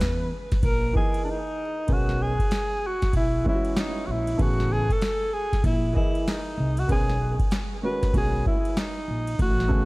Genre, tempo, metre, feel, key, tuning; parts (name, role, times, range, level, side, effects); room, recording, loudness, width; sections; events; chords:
hip hop, jazz-hop; 96 BPM; 4/4; swing 64% on 16ths; B major; A4 = 442 Hz
breathy alto saxophone; melody; 0.0-9.9 s; D4 to B4; -28 LUFS; equal; tape echo
upright bass; bass; 0.0-9.8 s; A1 to E2; -27 LUFS; equal
booming analog drum machine; drums; 0.0-9.9 s; hi-hat, kick drum, ride cymbal, snare drum; -25 LUFS; equal
warm upright piano; accompaniment; 0.9-9.9 s; C#3 to D#5; -32 LUFS; right 1 dB; tape echo
small room ambience; echo-heavy mix, vinyl crackle; -22 LUFS; side -22 dB against mid
0.0-1.9 A section; 1.9-9.9 B section
alto saxophone solo 0.0-1.9; break 1.3-1.9
0.0 Asus2 (rootless); 0.6 Emaj7#11/A#; 1.9 B69; 3.1 E69/B; 4.4 Amaj9; 5.6 C7alt/Bb; 6.9 B69; 8.1 Bmaj13